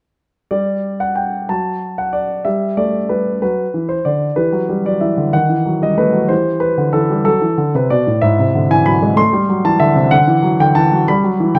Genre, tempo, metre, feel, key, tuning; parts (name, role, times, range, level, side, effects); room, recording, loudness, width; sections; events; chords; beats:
classical-period piano sonatina; 62 BPM (dotted quarters); 6/8; straight; G major; A4 = 440 Hz
warm grand piano; solo; 0.5-11.6 s; G#2 to C6; -15 LUFS; equal
moderate recital hall reverb, RT60 1.4 s; close, detailed microphones; -15 LUFS; mono
0.5-11.6 A section
0.5 N.C.; 2.5 G5; 4.4 Em; 5.3 D#dim; 6.3 Em; 8.2 E7/G#; 9.2 Am; 10.1 D; 11.1 G
| 0.51 1.49 | 2.45 3.42 | 4.38 5.34 | 6.31 7.26 | 8.23 9.18 | 10.13 11.08